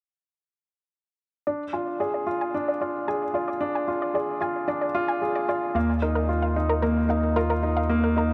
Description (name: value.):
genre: piano and strings electronica.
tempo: 112 BPM.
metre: 4/4.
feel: straight.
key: unclear.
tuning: A4 = 439 Hz.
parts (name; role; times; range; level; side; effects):
analog pluck; arpeggios; 1.5-8.3 s; Bb4 to Ab5; -32 LUFS; equal; chorus, vintage 12-bit sampler grit, delay.
warm grand piano; riff; 1.5-8.3 s; Bb3 to Ab4; -27 LUFS; equal; delay.
warm sub bass; bass; 5.7-8.3 s; Eb2; -29 LUFS; equal; none.
room: moderate huge ambient reverb, RT60 7.3 s.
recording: nothing above 10.3 kHz.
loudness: -26 LUFS.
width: mono.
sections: 1.5-8.3 A section.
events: filter sweep on synth arpeggio sound 1.5-8.3.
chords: 1.5 Ddim; 5.8 Ebsus2.